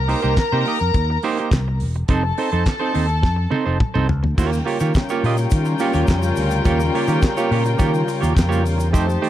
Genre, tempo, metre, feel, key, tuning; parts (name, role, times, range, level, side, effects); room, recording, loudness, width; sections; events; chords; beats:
disco; 105 BPM; 4/4; straight; A4 = 440 Hz
warm studio string section; second line; 0.0-9.3 s; Db4 to Bb5; -24 LUFS; left 2 dB
fingered electric bass; bass; 0.0-9.2 s; E1 to Eb3; -20 LUFS; equal
semi-hollow electric guitar; accompaniment; 0.1-9.3 s; A3 to Eb5; -23 LUFS; right 6 dB
damped 70s drum kit; drums; 0.1-9.3 s; crash cymbal, handclaps, hi-hat, kick drum, snare drum, toms; -21 LUFS; equal
dark studio string section; sustained chords; 4.4-9.3 s; Db3 to G4; -26 LUFS; left 3 dB
tube shaker; percussion; 4.4-9.2 s; -40 LUFS; left 7 dB
small room reverb; dark, warm production; -16 LUFS; side -12 dB against mid
0.0-4.4 A section; 4.4-9.3 B section
drum fill 3.2-4.4
0.0 Cm7; 2.1 F7; 4.4 Eb9
0.37 0.94 1.51 | 2.08 2.66 3.23 3.80 | 4.37 4.94 5.51 6.09 | 6.66 7.23 7.80 8.37 | 8.94